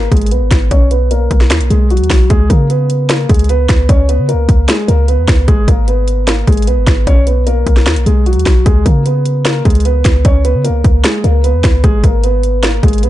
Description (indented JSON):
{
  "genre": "hip hop, trap",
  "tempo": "151 BPM",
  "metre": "4/4",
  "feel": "half-time",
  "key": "unclear",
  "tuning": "A4 = 442 Hz",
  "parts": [
    { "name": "felt-muted upright piano", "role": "melody", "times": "0.0-13.1 s", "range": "F#3 to C#5", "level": "-16 LUFS", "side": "equal", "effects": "low-pass filter, tape echo" },
    { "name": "clean 808-style bass", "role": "bass", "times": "0.0-13.1 s", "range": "G#1 to C#3", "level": "-12 LUFS", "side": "equal", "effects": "none" },
    { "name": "trap drum kit", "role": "drums", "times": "0.1-13.1 s", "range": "finger snaps, hi-hat, kick drum, snare drum", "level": "-12 LUFS", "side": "equal", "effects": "overdrive" }
  ],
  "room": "little or no reverb",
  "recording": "dark, warm production, nothing above 10.4 kHz",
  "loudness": "-9 LUFS",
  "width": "side -14 dB against mid",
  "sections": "0.0-13.1 A section",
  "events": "filter sweep on felt piano 0.0-2.3",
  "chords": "0.0 G#m; 0.7 B6; 2.3 C#7(no3); 5.5 G#m; 7.1 B6; 8.7 C#7(no3); 11.8 G#m"
}